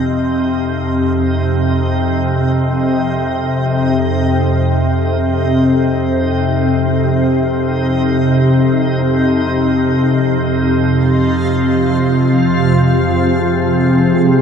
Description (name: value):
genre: dark ambient drone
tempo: free time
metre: none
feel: none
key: F minor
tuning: A4 = 440 Hz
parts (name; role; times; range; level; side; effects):
- organ-like drone; drone; 0.0-14.4 s; F2 to C3; -13 LUFS; equal; ensemble chorus, built-in reverb
- backwards swelling texture; texture; 0.0-14.4 s; Eb4 to F5; -23 LUFS; right 1 dB; built-in reverb
- granular cloud pad; sustained chords; 11.5-14.4 s; F3 to C5; -18 LUFS; right 1 dB; built-in reverb
room: wet spring reverb, RT60 2.5 s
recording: echo-heavy mix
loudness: -12 LUFS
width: side -7 dB against mid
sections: 0.0-14.4 A section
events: none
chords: 0.0 F5; 10.5 N.C.